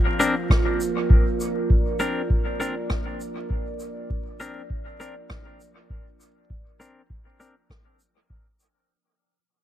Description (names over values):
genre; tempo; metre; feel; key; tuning
ambient dub; 100 BPM; 4/4; swing 58% on 16ths; unclear; A4 = 441 Hz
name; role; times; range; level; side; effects
deep dark ambient pad; sustained chords; 0.0-8.9 s; F4 to Ab5; -29 LUFS; right 3 dB; chorus, built-in reverb
semi-hollow electric guitar; stabs; 0.2-7.5 s; C4 to Bb4; -27 LUFS; left 3 dB; low-pass filter, dub echo
shaker and rim click; drums; 0.2-8.7 s; none; -34 LUFS; equal; dub echo
electronic kick drum; drums; 0.5-8.4 s; none; -21 LUFS; equal; none
room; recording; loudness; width
small room ambience; echo-heavy mix, vinyl crackle; -21 LUFS; side -12 dB against mid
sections
0.0-8.9 A section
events
fade-out 0.0-8.9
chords
0.0 Bbadd9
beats
0.50 1.10 | 1.70 2.30 2.90 3.50 | 4.10 4.70 5.30 5.90 | 6.50 7.10 7.70 8.30